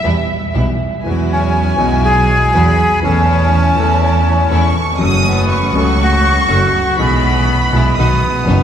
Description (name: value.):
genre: tango.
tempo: 121 BPM.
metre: 4/4.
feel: rubato.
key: E major.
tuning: A4 = 443 Hz.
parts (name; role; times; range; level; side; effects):
rich chamber violin section; second line; 0.0-8.6 s; E5 to D#6; -20 LUFS; equal; none.
warm grand piano; accompaniment; 0.0-8.6 s; F#1 to A4; -19 LUFS; left 2 dB; none.
bright studio string section; stabs; 0.0-8.6 s; F#3 to F#4; -23 LUFS; right 3 dB; none.
rich double bass; bass; 0.0-8.6 s; F#1 to E2; -15 LUFS; right 1 dB; none.
bandoneon; melody; 1.3-8.6 s; B3 to G#4; -16 LUFS; equal; none.
room: wet cathedral reverb, RT60 4.7 s.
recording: recorded in a church or concert hall.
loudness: -11 LUFS.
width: side -9 dB against mid.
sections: 0.0-1.0 A section; 1.0-8.6 B section.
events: violin section solo 0.0-1.0.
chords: 0.0 Em; 1.0 Eadd9; 3.0 A/E; 5.0 F#m; 7.0 E/B; 8.0 B.